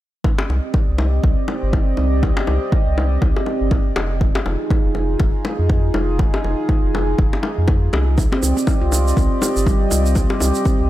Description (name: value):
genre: afro house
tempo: 121 BPM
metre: 4/4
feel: swing 57% on 16ths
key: C minor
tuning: A4 = 442 Hz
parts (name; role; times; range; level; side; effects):
- warm analog pad; sustained chords; 0.2-10.9 s; C4 to Eb5; -24 LUFS; right 1 dB; chorus, sidechain pumping
- electronic kick drum; drums; 0.2-10.8 s; none; -18 LUFS; equal; none
- bongos; percussion; 0.2-10.8 s; none; -26 LUFS; left 3 dB; none
- warm sub bass; bass; 0.5-10.9 s; F1 to F2; -19 LUFS; equal; sidechain pumping
- tube shaker; percussion; 8.2-10.8 s; none; -27 LUFS; right 4 dB; none
- handpan; arpeggios; 8.3-10.8 s; G3 to G4; -21 LUFS; right 1 dB; sidechain pumping, ping-pong delay
room: studio reverb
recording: none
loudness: -16 LUFS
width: side -14 dB against mid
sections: 0.2-10.9 A section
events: filter sweep on sub bass 0.2-10.9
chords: 0.2 Cm; 4.2 Fm7; 8.2 Cm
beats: | 0.24 0.74 1.24 1.73 | 2.23 2.72 3.22 3.71 | 4.21 4.71 5.20 5.70 | 6.19 6.69 7.18 7.68 | 8.18 8.67 9.17 9.66 | 10.16 10.66